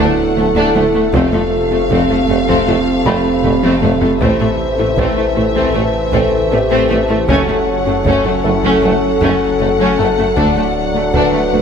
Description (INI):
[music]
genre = cinematic, hybrid orchestral and electronic film score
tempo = 78 BPM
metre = 4/4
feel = straight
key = A minor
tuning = A4 = 440 Hz
[part]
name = pure breathy sine lead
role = melody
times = 0.0-11.6 s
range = C4 to D5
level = -19 LUFS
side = right 2 dB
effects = chorus, tape echo
[part]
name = warm symphonic violin section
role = melody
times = 0.0-11.6 s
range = E5 to F#5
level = -24 LUFS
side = left 6 dB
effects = none
[part]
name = warm symphonic violin section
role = second line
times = 0.0-11.6 s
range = A3 to D4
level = -20 LUFS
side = left 4 dB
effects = none
[part]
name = rich symphonic viola section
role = accompaniment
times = 0.0-11.6 s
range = A3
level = -23 LUFS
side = right 2 dB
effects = none
[part]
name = mellow French horn section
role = sustained chords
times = 0.0-11.6 s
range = C3 to A4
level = -21 LUFS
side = left 4 dB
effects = none
[part]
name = mellow trombone section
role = sustained chords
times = 0.0-11.6 s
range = E3 to A3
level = -21 LUFS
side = right 2 dB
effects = none
[part]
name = soft round pluck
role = arpeggios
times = 0.0-11.6 s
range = D3 to A4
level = -25 LUFS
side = left 7 dB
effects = chorus, tape echo
[part]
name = clear tuba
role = bass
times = 0.0-11.6 s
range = F1 to D2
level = -24 LUFS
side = right 4 dB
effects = none
[part]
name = detuned saw bass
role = bass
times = 0.0-11.6 s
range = D1 to A1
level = -24 LUFS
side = equal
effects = none
[part]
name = rich studio cello section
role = bass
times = 0.0-11.6 s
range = D2 to A2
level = -23 LUFS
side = right 3 dB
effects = none
[part]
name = warm symphonic double bass section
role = bass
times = 0.0-11.6 s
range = F1 to D2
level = -24 LUFS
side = right 4 dB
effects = none
[part]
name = dark concert grand piano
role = texture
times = 0.0-11.6 s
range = B3 to B5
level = -28 LUFS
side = left 3 dB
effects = none
[part]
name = taiko ensemble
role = drums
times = 1.1-11.6 s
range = none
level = -24 LUFS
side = left 1 dB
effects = none
[sound]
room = light reverb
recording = none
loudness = -11 LUFS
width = side -7 dB against mid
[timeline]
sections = 0.0-11.6 A section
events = drum fill 3.4-4.2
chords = 0.0 D; 1.1 F; 4.2 Am; 7.3 F#m; 10.4 D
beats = 0.37 | 1.14 1.91 2.67 3.44 | 4.21 4.98 5.75 6.52 | 7.29 8.06 8.83 9.60 | 10.37 11.14